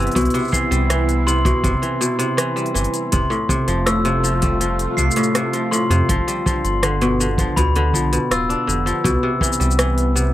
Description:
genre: folktronica.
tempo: 81 BPM.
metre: 4/4.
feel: straight.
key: C major.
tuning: A4 = 440 Hz.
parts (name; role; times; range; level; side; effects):
warm analog pad; sustained chords; 0.0-10.3 s; C3 to G4; -25 LUFS; right 1 dB; chorus.
kora; arpeggios; 0.0-10.3 s; A2 to F4; -21 LUFS; equal; vintage 12-bit sampler grit, ping-pong delay.
round analog bass; bass; 0.0-10.3 s; D1 to F2; -20 LUFS; equal; none.
organic electronic drum kit; drums; 0.0-10.3 s; hi-hat, rim click, shaker; -24 LUFS; left 1 dB; overdrive.
kick drum; drums; 0.2-9.6 s; none; -23 LUFS; equal; none.
glockenspiel with soft plastic mallets; second line; 0.5-8.5 s; B5 to C7; -24 LUFS; left 3 dB; ping-pong delay.
room: light reverb.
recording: none.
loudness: -16 LUFS.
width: side -13 dB against mid.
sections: 0.0-9.1 A section; 9.1-10.3 B section.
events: none.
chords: 0.0 Cmaj7; 3.1 Fadd9; 6.1 G7; 9.1 Cmaj7.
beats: | 0.16 0.90 1.64 2.38 | 3.12 3.87 4.61 5.35 | 6.09 6.83 7.57 8.31 | 9.05 9.79.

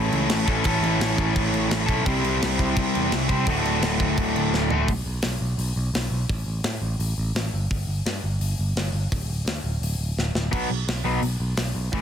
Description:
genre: punk rock.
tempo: 170 BPM.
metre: 4/4.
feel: straight.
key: unclear.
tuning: A4 = 439 Hz.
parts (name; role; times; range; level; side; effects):
cranked stack guitar; riff; 0.0-4.9, 10.5-12.0 s; D2 to C5; -22 LUFS; left 1 dB; overdrive.
picked electric bass; bass; 0.0-12.0 s; D1 to A2; -26 LUFS; equal; none.
tight metal drum kit; drums; 0.1-12.0 s; crash cymbal, hi-hat, kick drum, snare drum, toms; -27 LUFS; equal; soft clipping on kick.
room: little or no reverb.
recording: dense, heavily limited modern master.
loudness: -21 LUFS.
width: side -8 dB against mid.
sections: 0.0-4.9 A section; 4.9-12.0 B section.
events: drum fill 4.5-4.9, 10.2-10.5.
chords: 0.0 A; 2.1 C; 3.5 D; 4.9 N.C.; 10.5 B5.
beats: 0.31 | 0.66 1.01 1.36 1.72 | 2.07 2.42 2.77 3.12 | 3.47 3.83 4.18 4.53 | 4.88 5.24 5.59 5.94 | 6.29 6.65 7.00 7.35 | 7.71 8.06 8.41 8.76 | 9.12 9.47 9.82 10.18 | 10.53 10.88 11.23 11.58 | 11.94.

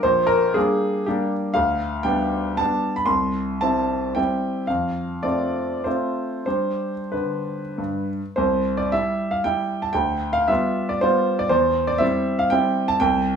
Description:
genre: classical, romantic triple-time dance for piano with dotted rhythms.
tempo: 90-129 BPM.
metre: 3/4.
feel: rubato.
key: C major.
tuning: A4 = 441 Hz.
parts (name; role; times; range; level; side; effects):
clear baby grand piano; solo; 0.0-13.4 s; Bb1 to C6; -20 LUFS; equal; none.
room: moderate studio reverb, RT60 0.5 s.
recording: small room reverb.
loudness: -20 LUFS.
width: side -7 dB against mid.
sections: 0.0-8.4 A section; 8.4-13.4 B section.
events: none.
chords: 0.0 Gm/Bb; 1.6 G7/D; 3.1 C; 4.7 F; 6.5 G; 8.4 C; 10.0 G7/D; 11.5 C/E.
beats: | 0.04 0.55 1.08 | 1.56 2.06 2.60 | 3.10 3.63 4.18 | 4.70 5.25 5.86 | 6.48 7.13 7.79 | 8.37 8.92 9.46 | 9.96 10.49 11.02 | 11.51 12.01 12.52 | 12.99.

